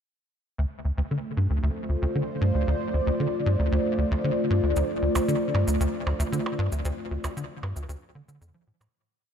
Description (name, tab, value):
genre	ambient, sequencer-driven space music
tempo	115 BPM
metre	4/4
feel	straight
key	D minor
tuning	A4 = 440 Hz
part	sweeping resonant pad	sustained chords	0.6-8.9 s	A3 to D5	-28 LUFS	equal	chorus
part	tight sequencer bass	riff	0.6-8.9 s	D2 to F3	-26 LUFS	equal	ensemble chorus, tape echo
part	shaker and percussion blips	percussion	4.8-8.9 s	none	-37 LUFS	right 4 dB	tape echo
room	moderate lush hall reverb, RT60 2.7 s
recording	none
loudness	-24 LUFS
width	side -8 dB against mid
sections	0.6-8.9 A section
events	fade-out 6.2-8.9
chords	0.6 Dm7